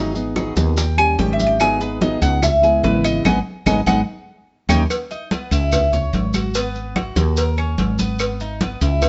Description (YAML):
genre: latin, Cuban son and guajira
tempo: 146 BPM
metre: 4/4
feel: straight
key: G# minor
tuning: A4 = 443 Hz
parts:
  - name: fingerpicked plugged-in steel-string acoustic guitar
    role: accompaniment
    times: 0.0-4.8 s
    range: C#3 to G#4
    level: -25 LUFS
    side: equal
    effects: none
  - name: woody fretless electric bass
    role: bass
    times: 0.0-9.1 s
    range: G#1 to D#2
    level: -23 LUFS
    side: equal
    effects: none
  - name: congas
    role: percussion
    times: 0.2-9.1 s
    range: none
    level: -26 LUFS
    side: equal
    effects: none
  - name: maracas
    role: percussion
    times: 0.2-9.1 s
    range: none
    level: -33 LUFS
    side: equal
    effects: none
  - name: bongos and cowbell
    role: percussion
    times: 0.4-9.1 s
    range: none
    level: -29 LUFS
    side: equal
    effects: none
  - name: claves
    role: percussion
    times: 0.4-9.1 s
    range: none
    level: -31 LUFS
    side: equal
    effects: none
  - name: Cuban tres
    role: arpeggios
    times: 0.8-9.1 s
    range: B3 to G#5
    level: -23 LUFS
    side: equal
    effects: none
room: light reverb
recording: band playing live in one room, nothing above 7.9 kHz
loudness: -19 LUFS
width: mono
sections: 0.0-4.9 A section; 4.9-9.1 B section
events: Cuban tres solo 0.0-4.9; band accent 3.2-4.9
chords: 0.0 G#m7; 0.8 D#7; 1.6 G#m7; 2.4 C#m7; 3.2 G#m7; 4.1 D#7; 4.9 C#m9; 5.7 C#m; 6.5 G#m7; 7.4 D#5; 8.2 G#m